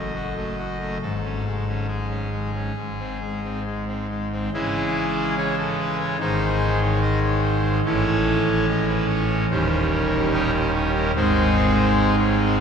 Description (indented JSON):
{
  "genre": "classical, chorale-style piece for pipe organ",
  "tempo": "67-74 BPM",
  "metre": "4/4",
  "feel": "rubato",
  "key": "C# minor",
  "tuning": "A4 = 439 Hz",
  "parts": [
    { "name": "pipe organ, trumpet", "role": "solo", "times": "0.0-12.6 s", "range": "D#1 to D#5", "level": "-20 LUFS", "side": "equal", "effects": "none" }
  ],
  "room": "wet cathedral reverb, RT60 6.3 s",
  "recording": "heard from further back in the room",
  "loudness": "-20 LUFS",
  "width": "side -7 dB against mid",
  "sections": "0.0-4.5 A section; 4.5-12.6 B section",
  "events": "none",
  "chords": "0.0 D#dim/F#; 1.0 C#5/G#; 2.8 G#; 4.5 C#m; 6.2 G#5; 7.9 A; 9.5 D#7; 11.2 G#"
}